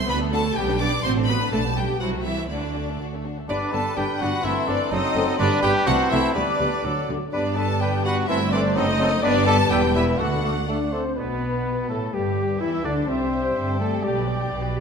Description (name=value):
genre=quick classical-period movement for symphony orchestra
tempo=125 BPM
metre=2/4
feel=straight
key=G major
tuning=A4 = 440 Hz
part: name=rich chamber violin section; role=melody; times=0.0-14.8 s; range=G4 to D6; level=-30 LUFS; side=left 3 dB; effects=none
part: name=warm studio violin section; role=second line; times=0.0-14.5 s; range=A3 to A5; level=-31 LUFS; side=left 4 dB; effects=none
part: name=rich chamber viola section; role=accompaniment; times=0.0-14.8 s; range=E3 to G5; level=-30 LUFS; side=equal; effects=none
part: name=dark chamber double bass section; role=bass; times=0.0-14.8 s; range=E1 to E2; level=-28 LUFS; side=right 3 dB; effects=none
part: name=rich chamber cello section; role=bass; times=0.1-14.8 s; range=D2 to D4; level=-29 LUFS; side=right 3 dB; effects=none
part: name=clear oboe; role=second line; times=3.5-14.8 s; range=B3 to E5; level=-33 LUFS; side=right 1 dB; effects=none
part: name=large flute ensemble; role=second line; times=3.5-14.7 s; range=D4 to E6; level=-32 LUFS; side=left 2 dB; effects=none
part: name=mellow clarinet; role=second line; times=3.5-14.8 s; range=G3 to G4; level=-32 LUFS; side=left 2 dB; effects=none
part: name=mellow bassoon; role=accompaniment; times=3.5-14.8 s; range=G2 to A3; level=-32 LUFS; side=right 2 dB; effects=none
part: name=mellow trumpet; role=stabs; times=3.5-14.5 s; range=D4 to E5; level=-27 LUFS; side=right 1 dB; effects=none
part: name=mellow French horn section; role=sustained chords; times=3.7-14.5 s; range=G3 to C5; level=-28 LUFS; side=left 4 dB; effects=none
room=wet scoring stage reverb, RT60 1.6 s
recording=none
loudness=-20 LUFS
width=side -6 dB against mid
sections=0.0-3.5 A section; 3.5-11.2 B section; 11.2-14.8 C section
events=none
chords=0.1 D; 0.6 G/B; 1.0 D7/A; 1.5 G/B; 2.0 Am/C; 2.5 D; 3.5 G; 4.4 Am7/G; 4.9 F#dim7; 5.4 G; 5.9 Am; 6.4 G/D; 6.8 D; 7.3 G; 8.3 Am7/G; 8.8 F#dim7; 9.2 G; 9.7 Em; 10.2 D; 11.2 G/B; 12.1 Em/G; 13.1 C; 14.0 G/B